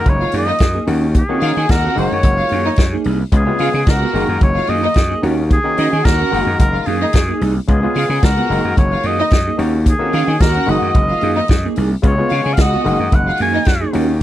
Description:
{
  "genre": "disco",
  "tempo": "110 BPM",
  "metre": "4/4",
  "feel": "straight",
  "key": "F# major",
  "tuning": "A4 = 440 Hz",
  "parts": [
    { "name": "warm oboe", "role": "melody", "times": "0.0-13.9 s", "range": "G#4 to G#5", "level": "-20 LUFS", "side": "equal", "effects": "none" },
    { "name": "warm studio string section", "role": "second line", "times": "0.0-13.6 s", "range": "D#4 to G#5", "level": "-22 LUFS", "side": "equal", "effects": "none" },
    { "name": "mellow clav", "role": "accompaniment", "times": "0.0-14.2 s", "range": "C#3 to F#4", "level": "-24 LUFS", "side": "left 6 dB", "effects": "none" },
    { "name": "clean electric guitar", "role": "accompaniment", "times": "0.1-14.1 s", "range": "A#3 to A#4", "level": "-22 LUFS", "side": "right 4 dB", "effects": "ensemble chorus" },
    { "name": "gritty slap bass", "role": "bass", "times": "0.1-14.2 s", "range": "F#1 to D#3", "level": "-18 LUFS", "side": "equal", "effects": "overdrive" },
    { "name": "vintage drum kit", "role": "drums", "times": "0.1-14.1 s", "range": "hi-hat, kick drum, snare drum", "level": "-14 LUFS", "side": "equal", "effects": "none" }
  ],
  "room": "little or no reverb",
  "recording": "dry, close 1970s-style studio recording",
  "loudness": "-13 LUFS",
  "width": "side -13 dB against mid",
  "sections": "0.0-14.2 A section",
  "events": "none",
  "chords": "0.0 F#69; 0.9 D#m7; 2.0 F#69; 3.3 C#7; 4.1 F#69; 5.2 D#m7; 6.3 F#69; 7.7 C#7; 8.5 F#69; 9.6 D#m7; 10.7 F#69; 12.0 C#7; 12.9 F#69"
}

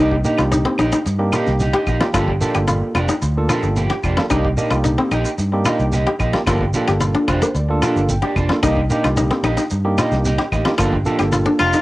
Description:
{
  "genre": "afrobeat",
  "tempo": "111 BPM",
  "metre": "4/4",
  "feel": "straight",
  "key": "C dorian",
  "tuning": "A4 = 440 Hz",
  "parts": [
    { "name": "barky tine electric piano", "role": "accompaniment", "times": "0.0-11.8 s", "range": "Bb3 to Bb5", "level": "-23 LUFS", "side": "right 1 dB", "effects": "overdrive, cassette tape" },
    { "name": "koto", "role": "arpeggios", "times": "0.0-11.8 s", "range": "Bb3 to G4", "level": "-20 LUFS", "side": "left 2 dB", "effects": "cassette tape, analog delay" },
    { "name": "electric guitar at the edge of break-up", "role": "stabs", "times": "0.0-11.8 s", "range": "F3 to G4", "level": "-24 LUFS", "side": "right 2 dB", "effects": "cassette tape, analog delay" },
    { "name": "fingered electric bass", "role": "bass", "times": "0.0-11.7 s", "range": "F1 to G2", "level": "-20 LUFS", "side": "equal", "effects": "none" },
    { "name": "damped 70s drum kit", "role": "drums", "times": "0.1-11.8 s", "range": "hi-hat, kick drum, snare drum", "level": "-27 LUFS", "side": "equal", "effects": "cassette tape" },
    { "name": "shekere", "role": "percussion", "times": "0.2-11.8 s", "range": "none", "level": "-27 LUFS", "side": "right 1 dB", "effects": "none" },
    { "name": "claves", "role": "percussion", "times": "0.4-11.7 s", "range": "none", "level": "-28 LUFS", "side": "left 1 dB", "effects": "none" }
  ],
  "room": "wet small room reverb, RT60 0.5 s",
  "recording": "home recording on cassette",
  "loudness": "-15 LUFS",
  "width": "side -18 dB against mid",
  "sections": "0.0-11.8 A section",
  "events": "tine electric piano fill 7.0-8.6, 11.3-11.8",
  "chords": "0.0 Cm7; 2.1 Gm7; 4.3 Cm7; 6.5 Gm7; 8.6 Cm7; 10.8 Gm7"
}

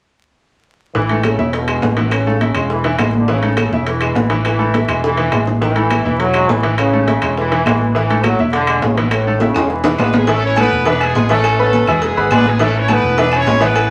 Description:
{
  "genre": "latin, salsa",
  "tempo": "206 BPM",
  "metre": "4/4",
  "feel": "straight",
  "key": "A major",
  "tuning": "A4 = 440 Hz",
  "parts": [
    { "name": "fingered electric bass", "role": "bass", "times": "0.9-13.9 s", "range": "E1 to A1", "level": "-22 LUFS", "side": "equal", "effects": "none" },
    { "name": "bongos and cowbell", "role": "percussion", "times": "0.9-13.9 s", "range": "none", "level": "-27 LUFS", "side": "equal", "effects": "none" },
    { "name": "clear trombone section", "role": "second line", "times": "1.0-10.1 s", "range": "A2 to F#3", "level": "-21 LUFS", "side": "equal", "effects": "none" },
    { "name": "bright upright piano", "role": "accompaniment", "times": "1.0-13.9 s", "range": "E3 to E6", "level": "-22 LUFS", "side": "equal", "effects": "none" },
    { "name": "congas", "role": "percussion", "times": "1.0-13.9 s", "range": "none", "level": "-24 LUFS", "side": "equal", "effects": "none" },
    { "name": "timbales and agogo bells", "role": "percussion", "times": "1.1-13.9 s", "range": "none", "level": "-24 LUFS", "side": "equal", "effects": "none" },
    { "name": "claves", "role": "percussion", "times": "1.2-13.9 s", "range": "none", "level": "-30 LUFS", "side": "equal", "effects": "none" },
    { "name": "brilliant horn section", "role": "melody", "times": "10.0-13.9 s", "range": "G#3 to C#5", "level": "-19 LUFS", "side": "equal", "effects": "none" }
  ],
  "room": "wet studio reverb, RT60 0.7 s",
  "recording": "vinyl crackle",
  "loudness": "-15 LUFS",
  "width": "mono",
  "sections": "1.0-10.3 A section; 10.3-13.9 B section",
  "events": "drum fill 5.0-5.6, 9.4-10.3",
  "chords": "1.0 A; 1.5 E; 3.3 A; 3.9 A5; 8.5 E7; 10.3 Aadd9; 10.9 E7; 11.4 Aadd9; 12.0 E7; 12.6 Aadd9; 13.2 E7"
}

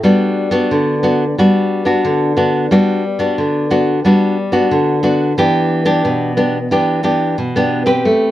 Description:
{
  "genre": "samba",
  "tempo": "90 BPM",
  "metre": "4/4",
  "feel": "straight",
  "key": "G major",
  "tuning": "A4 = 440 Hz",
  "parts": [
    { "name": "nylon-string guitar", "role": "solo", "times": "0.0-8.3 s", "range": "B2 to B4", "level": "-12 LUFS", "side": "equal", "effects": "none" }
  ],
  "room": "moderate studio reverb, RT60 0.7 s",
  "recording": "dark, warm production",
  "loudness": "-12 LUFS",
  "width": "side -14 dB against mid",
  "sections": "0.0-5.4 A section; 5.4-8.3 B section",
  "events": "none",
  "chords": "0.0 Gmaj7; 5.4 Em7"
}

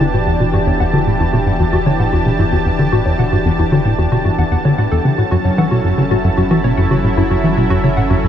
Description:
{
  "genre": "ambient, sequencer-driven space music",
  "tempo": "113 BPM",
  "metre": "4/4",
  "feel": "straight",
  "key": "unclear",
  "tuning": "A4 = 441 Hz",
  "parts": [
    { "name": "lush unison pad", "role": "sustained chords", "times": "0.0-8.3 s", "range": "E3 to A5", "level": "-17 LUFS", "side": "equal", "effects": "chorus" },
    { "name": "warbly dusty pluck", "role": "arpeggios", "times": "0.0-8.2 s", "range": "E4 to F#5", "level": "-22 LUFS", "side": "left 4 dB", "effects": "chorus, auto-pan, ping-pong delay" },
    { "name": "tight sequencer bass", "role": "riff", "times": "0.0-8.3 s", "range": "E2 to E3", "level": "-15 LUFS", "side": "equal", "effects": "lush chorus, ping-pong delay" },
    { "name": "warm sub bass", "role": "bass", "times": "0.0-8.3 s", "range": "E1 to F#1", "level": "-24 LUFS", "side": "equal", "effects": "none" }
  ],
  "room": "moderate huge ambient reverb, RT60 7.9 s",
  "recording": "none",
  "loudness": "-12 LUFS",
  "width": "side -9 dB against mid",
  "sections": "0.0-8.3 A section",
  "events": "none",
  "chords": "0.0 Em7; 5.0 F#m7"
}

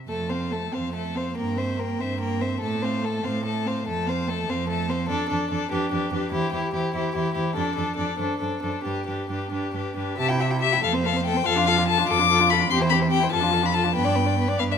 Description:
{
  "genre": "quick classical-period movement for string quartet",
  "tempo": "96 BPM (dotted quarters)",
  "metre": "6/8",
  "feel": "rubato",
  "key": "F major, C major from 5.1 s",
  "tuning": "A4 = 437 Hz",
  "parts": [
    { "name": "rich violin", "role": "melody", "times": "0.1-14.8 s", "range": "B4 to D6", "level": "-26 LUFS", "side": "left 10 dB", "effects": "none" },
    { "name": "rich violin", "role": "second line", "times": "0.1-14.8 s", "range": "F4 to G5", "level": "-28 LUFS", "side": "left 4 dB", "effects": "none" },
    { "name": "rich viola", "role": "accompaniment", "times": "0.1-14.8 s", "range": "A3 to G4", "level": "-29 LUFS", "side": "right 2 dB", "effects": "none" },
    { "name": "rich cello", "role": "bass", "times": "0.1-14.8 s", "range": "E2 to C3", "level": "-27 LUFS", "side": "right 4 dB", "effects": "none" }
  ],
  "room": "wet recital hall reverb, RT60 1.8 s",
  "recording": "none",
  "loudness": "-22 LUFS",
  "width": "side -7 dB against mid",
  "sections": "0.1-10.2 A section; 10.2-14.8 B section",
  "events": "none",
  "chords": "0.1 F; 1.4 C7/G; 2.6 F/A; 3.9 F; 5.1 Dm/F; 6.3 C/E; 7.6 Dm/F; 8.2 D7; 8.9 G; 10.2 C; 10.8 F; 11.5 Dm/F; 12.7 C/E; 13.3 Dm/F; 14.0 G"
}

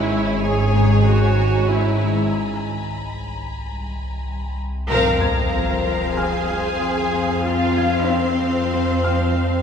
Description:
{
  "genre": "cinematic, suspense film score",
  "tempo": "94 BPM",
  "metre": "4/4",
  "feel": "straight",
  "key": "G# minor, F minor from 4.9 s",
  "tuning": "A4 = 438 Hz",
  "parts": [
    { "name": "warm symphonic violin section", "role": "melody", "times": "0.0-9.6 s", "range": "C5 to Bb5", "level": "-28 LUFS", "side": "left 2 dB", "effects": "none" },
    { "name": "warm symphonic violin section", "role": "second line", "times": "0.0-9.6 s", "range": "C5 to F5", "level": "-27 LUFS", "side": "left 2 dB", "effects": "none" },
    { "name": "rich symphonic viola section", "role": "accompaniment", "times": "0.0-9.6 s", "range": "F3 to G#4", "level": "-27 LUFS", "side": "right 3 dB", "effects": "none" },
    { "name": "evolving wavetable pad", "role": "sustained chords", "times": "0.0-9.6 s", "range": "G#4 to C6", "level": "-32 LUFS", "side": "equal", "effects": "ensemble chorus, built-in reverb, phaser" },
    { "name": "mellow French horn section", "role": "sustained chords", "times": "0.0-2.3 s", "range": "G#3 to C#4", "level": "-30 LUFS", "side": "equal", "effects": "none" },
    { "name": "Celtic harp", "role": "riff", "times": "0.0-9.6 s", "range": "F2 to G#3", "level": "-27 LUFS", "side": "left 6 dB", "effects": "none" },
    { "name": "rich symphonic cello section", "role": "bass", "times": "0.0-9.6 s", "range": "G#2 to Bb4", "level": "-24 LUFS", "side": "right 1 dB", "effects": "none" },
    { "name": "rich symphonic double bass section", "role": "bass", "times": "0.0-9.6 s", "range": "G#1 to F2", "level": "-25 LUFS", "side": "right 1 dB", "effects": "none" },
    { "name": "organ-like drone", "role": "drone", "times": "0.0-9.6 s", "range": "G#1 to F2", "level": "-25 LUFS", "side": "left 1 dB", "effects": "ensemble chorus, built-in reverb" },
    { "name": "felt-muted upright piano", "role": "texture", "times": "0.0-9.6 s", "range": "F5 to G#6", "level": "-32 LUFS", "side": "left 1 dB", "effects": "none" },
    { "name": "warm symphonic violin section", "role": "texture", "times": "0.0-4.6 s", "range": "G#5 to B5", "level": "-34 LUFS", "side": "left 3 dB", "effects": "none" },
    { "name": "sub drop", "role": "sound effects", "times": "4.9-7.5 s", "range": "none", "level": "-27 LUFS", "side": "equal", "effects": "none" }
  ],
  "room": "wet concert hall reverb, RT60 2.1 s",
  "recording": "recorded in a church or concert hall",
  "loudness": "-17 LUFS",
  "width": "side -7 dB against mid",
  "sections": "0.0-4.9 A section; 4.9-9.6 B section",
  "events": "break 2.4-4.9; band accent 4.9-5.5; impact 4.9-7.5",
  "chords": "0.0 C#m/G#; 2.4 G#add9/B#; 4.9 Fm"
}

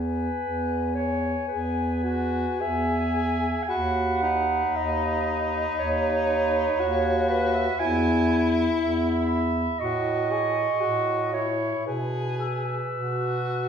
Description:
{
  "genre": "classical, lyrical piece for single-reed quartet",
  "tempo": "52-60 BPM",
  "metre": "4/4",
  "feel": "rubato",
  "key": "E major",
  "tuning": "A4 = 440 Hz",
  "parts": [
    { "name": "dark clarinet", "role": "melody", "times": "0.0-13.7 s", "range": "G#5 to E6", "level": "-32 LUFS", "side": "left 9 dB", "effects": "none" },
    { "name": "warm clarinet", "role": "second line", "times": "0.0-13.7 s", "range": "B4 to G#5", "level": "-28 LUFS", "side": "right 5 dB", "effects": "none" },
    { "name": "warm bass clarinet", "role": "bass", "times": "0.0-13.7 s", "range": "D#2 to B2", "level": "-27 LUFS", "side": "right 1 dB", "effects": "none" },
    { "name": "warm tenor saxophone", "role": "accompaniment", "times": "1.5-13.7 s", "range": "D#4 to G#4", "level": "-28 LUFS", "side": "left 2 dB", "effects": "none" }
  ],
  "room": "wet recital hall reverb, RT60 1.5 s",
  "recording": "heard from further back in the room",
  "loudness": "-22 LUFS",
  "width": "side -7 dB against mid",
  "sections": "0.0-13.7 A section",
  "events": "none",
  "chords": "0.0 E; 3.7 B/D#; 7.8 E5; 9.8 A; 11.9 E/B"
}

